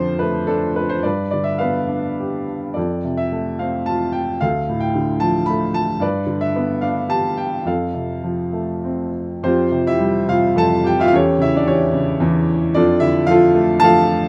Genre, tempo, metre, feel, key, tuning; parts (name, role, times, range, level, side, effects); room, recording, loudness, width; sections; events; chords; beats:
classical, lyrical solo piano; 96-115 BPM; 3/4; rubato; F lydian; A4 = 440 Hz
clear baby grand piano; solo; 0.0-14.3 s; D2 to B5; -18 LUFS; equal
light reverb; close, detailed microphones; -18 LUFS; mono
0.0-9.4 A section; 9.4-14.3 A section
0.0 Dm/F; 1.0 G; 2.8 F; 4.4 Dm; 6.0 G; 7.7 F; 9.4 Fsus2; 11.1 A7/E; 12.7 Dm/F
0.47 | 1.03 1.59 2.17 | 2.76 3.33 3.88 | 4.42 4.95 5.47 | 6.01 6.55 7.09 | 7.65 8.22 8.82 | 9.43 10.01 10.56 | 11.12 11.66 12.20 | 12.74 13.28 13.82